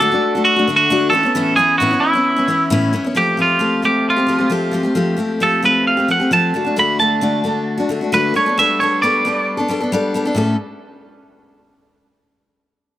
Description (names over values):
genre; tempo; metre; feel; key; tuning
rock; 133 BPM; 4/4; straight; unclear; A4 = 439 Hz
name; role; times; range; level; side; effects
twangy electric guitar; melody; 0.0-9.5 s; E4 to B5; -15 LUFS; right 2 dB; tape echo
picked steel-string acoustic guitar; accompaniment; 0.0-10.6 s; A2 to A4; -17 LUFS; left 2 dB; none
room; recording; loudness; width
moderate spring reverb, RT60 2.8 s; none; -14 LUFS; side -13 dB against mid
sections
0.0-3.2 A section; 3.2-10.4 B section; 10.4-12.2 C section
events
clean electric guitar solo 3.2-10.4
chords
0.0 D; 1.1 Aadd9; 3.2 Fadd9; 6.5 D; 8.3 Gadd9; 10.4 A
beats
0.02 0.47 0.91 | 1.36 1.81 2.26 2.71 | 3.16 3.61 4.06 4.51 | 4.96 5.41 5.86 6.31 | 6.76 7.21 7.66 8.11 | 8.56 9.02 9.46 9.92 | 10.37